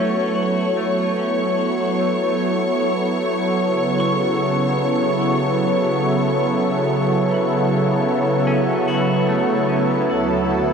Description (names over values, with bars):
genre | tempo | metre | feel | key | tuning
ambient | free time | none | none | unclear | A4 = 440 Hz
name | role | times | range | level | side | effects
warm analog pad | sustained chords | 0.0-10.7 s | D2 to C#5 | -17 LUFS | equal | chorus
clean electric guitar | arpeggios | 0.0-10.7 s | A3 to C#6 | -30 LUFS | left 1 dB | tremolo, analog delay
clear symphonic violin section | texture | 0.0-10.7 s | A4 to C#6 | -28 LUFS | left 1 dB | none
room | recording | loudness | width
wet echo chamber reverb, RT60 2.6 s | echo-heavy mix | -17 LUFS | side -6 dB against mid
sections
0.0-10.7 A section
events
fade-out on clean electric guitar 0.0-10.7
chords
0.0 B5; 3.6 F#m/C#; 10.1 D